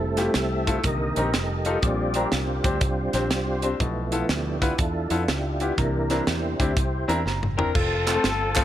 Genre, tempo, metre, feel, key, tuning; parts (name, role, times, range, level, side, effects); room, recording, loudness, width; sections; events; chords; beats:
uptempo gospel; 122 BPM; 4/4; swing 65% on 8ths; F major; A4 = 440 Hz
tonewheel organ; sustained chords; 0.0-8.6 s; D3 to A5; -28 LUFS; right 1 dB; slow rotary speaker, overdrive, chorus vibrato
fingered electric bass; bass; 0.0-8.6 s; F1 to F2; -28 LUFS; equal
clear baby grand piano; accompaniment; 0.2-8.6 s; Bb2 to Bb5; -28 LUFS; left 2 dB
tight funk drum kit; drums; 0.2-8.6 s; crash cymbal, hi-hat, kick drum, snare drum, toms; -26 LUFS; right 1 dB
mellow horn section; melody; 7.6-8.6 s; C4 to Bb4; -25 LUFS; left 4 dB
group handclap; percussion; 8.1-8.6 s; -27 LUFS; right 5 dB
light reverb, studio reverb; -22 LUFS; side -12 dB against mid
0.0-7.8 A section
tonewheel organ solo 0.0-7.8; grand piano fill 7.0-7.8; drum fill 7.3-7.8
0.0 Fmaj9; 0.8 Cm7; 1.3 F9; 1.8 Bb69; 3.8 G13/B; 5.8 C9; 7.8 F
0.35 0.84 1.34 | 1.83 2.32 2.82 3.31 | 3.80 4.30 4.79 5.29 | 5.78 6.27 6.77 7.26 | 7.75 8.24